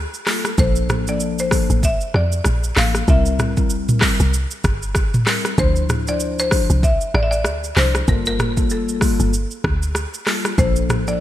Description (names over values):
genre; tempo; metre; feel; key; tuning
afrobeats; 96 BPM; 4/4; swing 58% on 16ths; C mixolydian; A4 = 441 Hz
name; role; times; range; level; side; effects
deep log drum bass; bass; 0.0-11.2 s; G1 to F2; -20 LUFS; equal; none
afro-pop drum kit; drums; 0.1-11.2 s; handclaps, hi-hat, kick drum, rim click, shaker, toms; -19 LUFS; equal; none
mellow tine electric piano; accompaniment; 0.3-11.2 s; F3 to C5; -24 LUFS; left 4 dB; lush chorus
buzzing marimba with hard mallets; melody; 0.6-11.2 s; A4 to F5; -23 LUFS; left 1 dB; digital delay
room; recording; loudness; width
light reverb, digital ambience; bright 1980s-style digital production; -16 LUFS; side -13 dB against mid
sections
0.0-11.2 A section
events
none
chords
0.0 Gm9; 0.6 Bbmaj7; 3.1 C7; 5.6 Dm9; 8.1 Gm9; 10.6 Bbmaj7